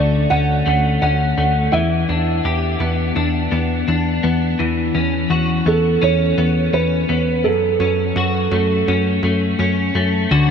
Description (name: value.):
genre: dream pop.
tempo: 84 BPM.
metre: 4/4.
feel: straight.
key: unclear.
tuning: A4 = 440 Hz.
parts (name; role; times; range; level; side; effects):
felt-muted upright piano; melody; 0.0-9.6 s; A4 to F#5; -21 LUFS; right 5 dB; tape echo.
clean electric guitar; arpeggios; 0.0-10.5 s; F#2 to G4; -19 LUFS; left 4 dB; ensemble chorus, tape echo.
plucky analog bass; bass; 0.0-10.5 s; D2 to F#2; -20 LUFS; right 1 dB; none.
room: moderate huge ambient reverb, RT60 7.3 s.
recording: none.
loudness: -15 LUFS.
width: side -7 dB against mid.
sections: 0.0-10.3 A section.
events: none.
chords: 0.0 Dmaj7; 1.7 Em7; 4.6 A69/E (rootless); 7.5 F#m.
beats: 0.31 1.02 | 1.74 2.45 3.17 3.88 | 4.60 5.31 6.02 6.74 | 7.45 8.17 8.88 9.60 | 10.31.